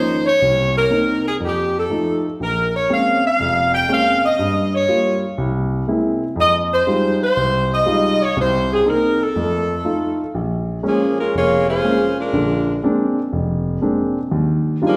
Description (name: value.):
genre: jazz.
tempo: 121 BPM.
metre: 4/4.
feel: swing 66% on 8ths.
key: unclear.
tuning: A4 = 436 Hz.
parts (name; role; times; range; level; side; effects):
warm saxophone section; melody; 0.0-15.0 s; F3 to G5; -20 LUFS; equal; none.
warm grand piano; accompaniment; 0.0-15.0 s; F1 to F4; -22 LUFS; equal; none.
room: wet recital hall reverb, RT60 1.5 s.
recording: recorded in a church or concert hall.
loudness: -18 LUFS.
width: mono.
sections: 0.0-10.4 A section; 10.4-15.0 B section.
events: none.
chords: 0.4 Cm7; 1.4 F7; 2.4 Bbm9; 4.4 Gm7b5; 5.4 Caug7; 6.4 Fm9; 8.4 Cm7; 9.4 F7; 10.4 Bbm7; 12.3 Bb9; 14.3 Ebmaj9.